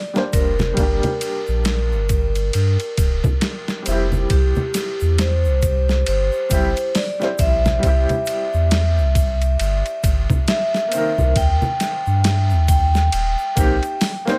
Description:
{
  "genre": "trip hop",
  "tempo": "68 BPM",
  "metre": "4/4",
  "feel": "swing 59% on 16ths",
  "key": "unclear",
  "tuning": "A4 = 440 Hz",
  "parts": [
    { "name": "vibraphone with medium hard mallets", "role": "melody", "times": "0.0-14.4 s", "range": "G4 to G5", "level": "-25 LUFS", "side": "equal", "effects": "tape echo" },
    { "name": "felt-muted upright piano", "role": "accompaniment", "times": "0.1-14.4 s", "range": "Eb3 to C5", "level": "-28 LUFS", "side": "equal", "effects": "tremolo, low-pass filter" },
    { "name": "boom bap sampler-style drum kit", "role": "drums", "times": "0.2-14.4 s", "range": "hi-hat, kick drum, ride cymbal, snare drum", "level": "-24 LUFS", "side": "equal", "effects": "small room reverb" },
    { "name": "tube shaker and congas", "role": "percussion", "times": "0.2-14.4 s", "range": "none", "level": "-29 LUFS", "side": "equal", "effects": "none" },
    { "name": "warm sub bass", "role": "bass", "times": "0.3-13.8 s", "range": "D1 to G2", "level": "-21 LUFS", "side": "equal", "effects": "none" }
  ],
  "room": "studio ambience",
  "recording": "none",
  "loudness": "-19 LUFS",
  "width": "mono",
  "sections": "0.0-14.4 A section",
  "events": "filter sweep on felt piano 0.0-14.4",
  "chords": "0.0 Gm; 4.3 C; 11.4 Eb6",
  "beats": "| 0.77 1.66 2.54 3.42 | 4.30 5.18 6.07 6.95 | 7.83 8.71 9.60 10.48 | 11.36 12.24 13.13 14.01"
}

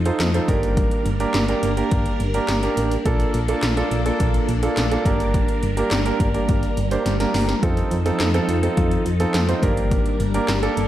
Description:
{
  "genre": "synth-pop",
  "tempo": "105 BPM",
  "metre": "4/4",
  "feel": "straight",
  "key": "unclear",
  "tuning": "A4 = 440 Hz",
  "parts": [
    { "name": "phased string machine", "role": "sustained chords", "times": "0.0-10.9 s", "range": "F3 to Bb4", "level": "-27 LUFS", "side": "left 1 dB", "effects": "ensemble chorus, phaser" },
    { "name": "solid FM bass", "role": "bass", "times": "0.0-10.9 s", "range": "G1 to F2", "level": "-23 LUFS", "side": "equal", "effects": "none" },
    { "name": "warm grand piano", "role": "accompaniment", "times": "0.1-10.8 s", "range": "Bb3 to C5", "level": "-23 LUFS", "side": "right 3 dB", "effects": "none" },
    { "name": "80s electronic pad drums", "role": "drums", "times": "0.1-10.9 s", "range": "handclaps, hi-hat, kick drum, snare drum", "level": "-23 LUFS", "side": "equal", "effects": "none" }
  ],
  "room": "moderate lush hall reverb, RT60 1.7 s, digital ambience",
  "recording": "dark, warm production",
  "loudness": "-18 LUFS",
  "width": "side -13 dB against mid",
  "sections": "0.0-10.9 A section",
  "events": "drum fill 7.1-7.6",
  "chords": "0.5 Gm; 3.1 Bbmaj7; 5.1 Gm; 7.6 F7; 9.6 Gm",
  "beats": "0.20 | 0.77 1.34 1.91 2.48 | 3.06 3.63 4.20 4.77 | 5.34 5.91 6.49 7.06 | 7.63 8.20 8.77 9.34 | 9.91 10.48"
}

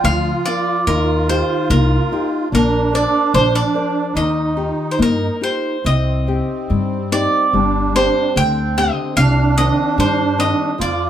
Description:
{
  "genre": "fado-style ballad",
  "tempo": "73 BPM",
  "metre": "2/4",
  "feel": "rubato",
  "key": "Eb major, C minor from 5.8 s",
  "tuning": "A4 = 439 Hz",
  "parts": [
    { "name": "bowl-back mandolin", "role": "melody", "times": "0.0-11.1 s", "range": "Bb4 to G5", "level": "-19 LUFS", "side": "right 2 dB", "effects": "plate reverb" },
    { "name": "musette accordion", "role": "second line", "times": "0.0-11.1 s", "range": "C4 to F4", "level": "-21 LUFS", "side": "right 4 dB", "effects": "none" },
    { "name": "nylon-string guitar", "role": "accompaniment", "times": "0.0-11.1 s", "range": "C3 to D5", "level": "-21 LUFS", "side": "left 4 dB", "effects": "none" },
    { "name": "upright bass", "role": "bass", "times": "0.0-11.1 s", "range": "G1 to G2", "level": "-19 LUFS", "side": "equal", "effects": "none" }
  ],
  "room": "wet studio reverb, RT60 0.5 s",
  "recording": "heard from further back in the room",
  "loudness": "-14 LUFS",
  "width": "side -10 dB against mid",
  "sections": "0.0-5.8 A section; 5.8-11.1 B section",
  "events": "none",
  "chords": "0.0 Bb; 0.9 Ebadd9; 2.5 Bbadd9; 4.2 Ebadd9; 5.8 Cm; 7.5 Gsus4; 9.2 Cmadd9",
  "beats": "0.04 | 0.87 1.70 | 2.52 3.33 | 4.15 4.99 | 5.85 6.70 | 7.54 8.36 | 9.17 9.98 | 10.80"
}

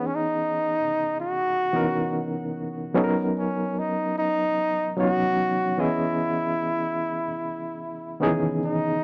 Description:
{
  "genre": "soul",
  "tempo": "74 BPM",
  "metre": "4/4",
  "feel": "swing 58% on 16ths",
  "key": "unclear",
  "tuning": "A4 = 441 Hz",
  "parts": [
    { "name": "warm flugelhorn", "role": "melody", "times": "0.0-9.0 s", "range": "C#4 to F#4", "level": "-28 LUFS", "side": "equal", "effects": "analog delay" },
    { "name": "barky reed electric piano", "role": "accompaniment", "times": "0.0-9.0 s", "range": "D#3 to D#5", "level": "-29 LUFS", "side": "equal", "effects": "overdrive, fast tremolo" }
  ],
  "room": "light reverb, small room ambience",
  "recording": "dark, warm production",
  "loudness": "-25 LUFS",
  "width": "mono",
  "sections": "0.0-9.0 A section",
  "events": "none",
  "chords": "0.0 C#m9; 3.0 Bmaj9; 5.8 C#m9",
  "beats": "0.53 1.34 2.15 | 2.96 3.77 4.58 5.38 | 6.19 7.00 7.81 8.62"
}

